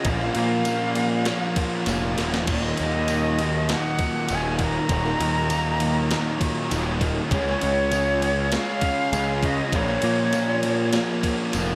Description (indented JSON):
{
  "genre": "rock, shoegaze and dream pop",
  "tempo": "99 BPM",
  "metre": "4/4",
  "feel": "straight",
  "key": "Eb minor",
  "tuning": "A4 = 440 Hz",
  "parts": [
    { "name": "jazz flute", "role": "melody", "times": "0.0-11.6 s", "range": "Db5 to Bb5", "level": "-30 LUFS", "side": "equal", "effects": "diffuse ambient delay" },
    { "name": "picked plugged-in twelve-string acoustic guitar", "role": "arpeggios", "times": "0.0-11.8 s", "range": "Eb2 to Ab4", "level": "-38 LUFS", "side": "equal", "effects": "none" },
    { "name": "overdriven electric guitar", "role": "riff", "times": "0.0-11.8 s", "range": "Eb2 to Db4", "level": "-32 LUFS", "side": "equal", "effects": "lush chorus" },
    { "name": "raw garage guitar", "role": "riff", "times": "0.0-11.8 s", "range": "Eb2 to Ab4", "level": "-33 LUFS", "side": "equal", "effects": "overdrive, reverse reverb" },
    { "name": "thick fuzz guitar", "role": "riff", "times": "0.0-11.8 s", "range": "Eb2 to Db4", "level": "-32 LUFS", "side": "equal", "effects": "distortion, subtle chorus" },
    { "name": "gated 80s digital drum machine", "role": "drums", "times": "0.0-11.7 s", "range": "crash cymbal, kick drum, ride cymbal, snare drum", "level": "-32 LUFS", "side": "equal", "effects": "gated reverb, gated reverb snare" },
    { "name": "fuzz picked electric bass", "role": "bass", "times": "0.1-11.8 s", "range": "Eb1 to Bb2", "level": "-28 LUFS", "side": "equal", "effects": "overdrive" },
    { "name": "tambourine", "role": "percussion", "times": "0.7-11.7 s", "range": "none", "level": "-42 LUFS", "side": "equal", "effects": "none" }
  ],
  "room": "moderate lush hall reverb, RT60 1.8 s",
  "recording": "dreamy mix soaked in reverb",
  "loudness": "-23 LUFS",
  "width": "mono",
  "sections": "0.0-11.8 A section",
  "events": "drum fill 1.9-2.5",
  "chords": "0.1 Bbm; 2.5 Ebm; 7.3 Db; 9.7 Bbm"
}